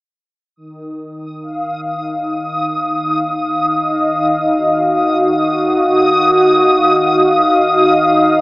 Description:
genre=ambient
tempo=free time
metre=none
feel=none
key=Eb minor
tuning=A4 = 441 Hz
part: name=warm analog pad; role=sustained chords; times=0.6-8.4 s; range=Eb3 to F5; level=-13 LUFS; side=equal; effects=chorus
part: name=analog drone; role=drone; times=4.7-8.4 s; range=Eb3 to Bb3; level=-44 LUFS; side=left 1 dB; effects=none
part: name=backwards swelling texture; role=texture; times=1.6-8.4 s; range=Eb6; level=-16 LUFS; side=equal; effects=built-in reverb
room=wet huge ambient reverb, RT60 8.8 s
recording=dreamy mix soaked in reverb, AM radio sound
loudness=-11 LUFS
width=side -22 dB against mid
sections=0.6-8.4 A section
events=none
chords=0.6 Ebm

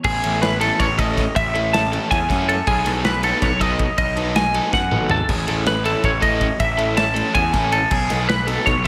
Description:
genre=math rock and midwest emo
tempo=320 BPM (eighths)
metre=7/8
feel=straight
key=unclear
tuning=A4 = 440 Hz
part: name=electric guitar through a small old amp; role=accompaniment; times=0.0-0.8 s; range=E2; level=-38 LUFS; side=equal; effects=none
part: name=twelve-string electric guitar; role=arpeggios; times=0.0-8.9 s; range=G#4 to A5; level=-22 LUFS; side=equal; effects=digital delay
part: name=fuzz picked electric bass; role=bass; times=0.0-8.9 s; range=G#1 to F#2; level=-26 LUFS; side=equal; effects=overdrive
part: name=modern studio drum kit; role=drums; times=0.0-8.9 s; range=crash cymbal, kick drum, ride cymbal, snare drum, splash cymbal, toms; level=-26 LUFS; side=equal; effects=none
part: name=overdriven semi-hollow guitar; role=riff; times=0.2-8.9 s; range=F#3 to A4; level=-27 LUFS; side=equal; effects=harmonic tremolo
room=moderate recital hall reverb, RT60 1.6 s, studio ambience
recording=big arena sound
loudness=-19 LUFS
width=mono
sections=0.0-8.9 A section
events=drum fill 4.7-5.3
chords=0.0 Amaj7; 2.7 B13; 5.3 Amaj7; 7.9 B13

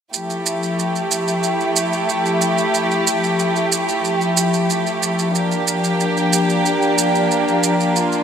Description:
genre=sunset chillout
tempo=92 BPM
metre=4/4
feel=straight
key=unclear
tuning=A4 = 440 Hz
part: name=dark chamber string section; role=sustained chords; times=0.1-8.2 s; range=F3 to G4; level=-16 LUFS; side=equal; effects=none
part: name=shaker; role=drums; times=0.1-8.2 s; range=none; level=-23 LUFS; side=right 7 dB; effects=overdrive, small room ambience
room=wet lush hall reverb, RT60 2.6 s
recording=bright 1980s-style digital production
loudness=-16 LUFS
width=side -8 dB against mid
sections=0.1-8.2 A section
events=none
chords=0.1 Fmaj9; 5.4 Gm7

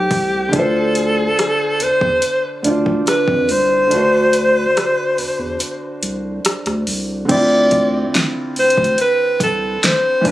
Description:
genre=contemporary R&B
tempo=71 BPM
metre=4/4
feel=straight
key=unclear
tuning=A4 = 436 Hz
part: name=warm alto saxophone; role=melody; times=0.0-10.3 s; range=G4 to D5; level=-15 LUFS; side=equal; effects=none
part: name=felt-muted upright piano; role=accompaniment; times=0.0-10.3 s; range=D3 to D5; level=-21 LUFS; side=right 1 dB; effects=none
part: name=saturated sub bass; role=bass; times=0.0-10.3 s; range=C2 to F2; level=-23 LUFS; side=equal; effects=none
part: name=smooth R&B drum kit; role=drums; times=0.1-10.3 s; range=crash cymbal, hi-hat, kick drum, rim click, snare drum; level=-20 LUFS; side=equal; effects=overdrive
room=digital ambience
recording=recorded on a phone in the room, studio ambience, compression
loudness=-14 LUFS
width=side -15 dB against mid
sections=0.0-7.3 A section; 7.3-10.3 B section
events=kick muted 3.9-7.3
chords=0.0 Am9; 0.5 Dm7; 3.9 D7; 7.3 Dm9

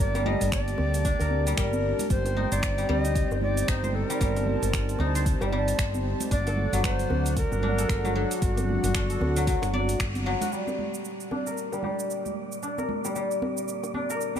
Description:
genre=organic downtempo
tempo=114 BPM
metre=4/4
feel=swing 59% on 16ths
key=G harmonic minor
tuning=A4 = 436 Hz
part: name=bright Native American-style cedar flute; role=melody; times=0.0-10.0 s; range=F#4 to Eb5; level=-32 LUFS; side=right 1 dB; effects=tape echo
part: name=warm analog pad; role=sustained chords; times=0.0-14.4 s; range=F#3 to A5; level=-35 LUFS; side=equal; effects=chorus, vintage 12-bit sampler grit, sidechain pumping
part: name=guzheng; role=arpeggios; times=0.0-14.4 s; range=F#3 to D5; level=-30 LUFS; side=left 2 dB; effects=low-pass filter, tape echo
part: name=woody fretless electric bass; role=bass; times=0.0-10.3 s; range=G1 to D2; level=-27 LUFS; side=equal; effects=sidechain pumping
part: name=afro-pop drum kit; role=drums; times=0.0-14.4 s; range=finger snaps, hi-hat, shaker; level=-35 LUFS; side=right 2 dB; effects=small room reverb
part: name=bongos and congas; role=percussion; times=0.1-14.4 s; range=none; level=-35 LUFS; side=right 3 dB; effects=none
part: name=electronic kick drum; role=drums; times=0.5-10.1 s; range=none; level=-29 LUFS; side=equal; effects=small room reverb
part: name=wind-like tuned noise texture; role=texture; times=11.7-14.4 s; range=D5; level=-38 LUFS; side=equal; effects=built-in reverb
room=light reverb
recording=none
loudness=-24 LUFS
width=side -9 dB against mid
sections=0.0-10.5 A section; 10.5-14.4 B section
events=band accent 10.0; filter sweep on guzheng 10.5-14.4; filter sweep on analog synth pad 10.5-14.4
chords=0.0 Gm; 2.1 Cm/G; 6.3 D/G; 10.5 Gm

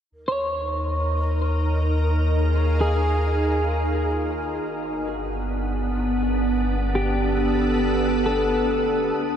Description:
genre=ambient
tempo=53 BPM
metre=4/4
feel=straight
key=unclear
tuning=A4 = 438 Hz
part: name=breathy mellow wooden-headed alto flute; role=melody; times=0.1-9.4 s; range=F4 to Bb4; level=-39 LUFS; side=right 1 dB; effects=none
part: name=soft additive organ-like pad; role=sustained chords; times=0.7-9.4 s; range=B3 to Ab5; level=-24 LUFS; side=equal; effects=ensemble chorus, built-in reverb
part: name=warm sub bass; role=bass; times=0.1-9.4 s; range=G1 to Eb2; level=-24 LUFS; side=equal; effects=none
part: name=wind-like tuned noise texture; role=texture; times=0.9-9.4 s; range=Eb6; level=-45 LUFS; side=right 3 dB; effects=none
part: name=clean electric guitar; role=arpeggios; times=0.3-9.4 s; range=G4 to Db5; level=-27 LUFS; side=equal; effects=analog chorus, ping-pong delay
room=wet huge ambient reverb, RT60 8.7 s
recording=in a vast, echoing space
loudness=-20 LUFS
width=side -8 dB against mid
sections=0.1-9.4 A section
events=none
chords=0.1 Eb7sus4; 4.7 Gmaj7

